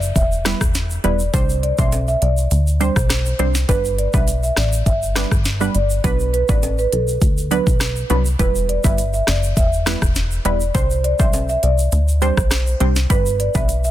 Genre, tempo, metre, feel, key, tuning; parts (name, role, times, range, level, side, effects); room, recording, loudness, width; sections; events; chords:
dancehall; 102 BPM; 4/4; straight; E minor; A4 = 440 Hz
plucky analog bass; bass; 0.0-13.9 s; E1 to D2; -19 LUFS; equal
egg shaker and timbales; percussion; 0.0-13.9 s; -30 LUFS; equal
marimba with soft mallets; melody; 0.2-13.9 s; A4 to E5; -22 LUFS; right 1 dB; digital delay
afro-pop drum kit; drums; 0.2-13.8 s; hi-hat, kick drum, rim click, snare drum; -19 LUFS; equal
punchy chord stab; accompaniment; 0.5-13.7 s; F#3 to C5; -24 LUFS; right 3 dB; chorus, sidechain pumping
little or no reverb; dense, heavily limited modern master; -15 LUFS; side -13 dB against mid
0.0-13.9 A section
0.0 Em; 1.3 Csus2; 3.7 G; 6.0 Bm; 8.4 Em; 10.7 Csus2; 13.1 G